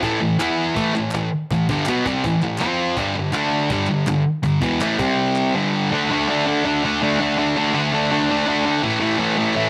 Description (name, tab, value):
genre	garage rock duo or trio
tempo	163 BPM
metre	4/4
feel	straight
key	unclear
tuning	A4 = 440 Hz
part	thick fuzz guitar	riff	0.0-9.7 s	E2 to F4	-20 LUFS	equal	distortion
part	cajon	drums	0.0-5.1 s	none	-32 LUFS	equal	none
part	group handclap	percussion	0.4-5.4 s	none	-36 LUFS	equal	none
room	light reverb, studio reverb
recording	none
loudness	-20 LUFS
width	mono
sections	0.0-5.9 A section; 5.9-9.7 B section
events	none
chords	0.0 A5; 0.4 E5; 0.8 A5; 2.6 F5; 3.0 G5; 3.3 D5; 3.7 G5; 5.0 C5; 5.5 G5; 5.9 D5; 8.8 A5